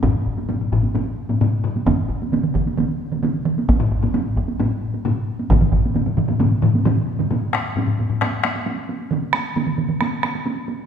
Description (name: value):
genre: japanese traditional, taiko drum ensemble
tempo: 132 BPM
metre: 4/4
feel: straight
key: none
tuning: none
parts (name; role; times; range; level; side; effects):
- taiko ensemble; percussion; 0.0-10.8 s; none; -25 LUFS; right 2 dB; none
- taiko ensemble; percussion; 0.0-8.5 s; none; -21 LUFS; left 3 dB; none
- taiko ensemble; percussion; 0.0-6.3 s; none; -22 LUFS; equal; none
- solo taiko drums; percussion; 1.9-10.3 s; none; -23 LUFS; right 4 dB; none
room: wet recital hall reverb, RT60 1.7 s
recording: recorded in a church or concert hall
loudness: -18 LUFS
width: side -8 dB against mid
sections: 0.0-7.3 A section; 7.3-10.9 B section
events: none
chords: none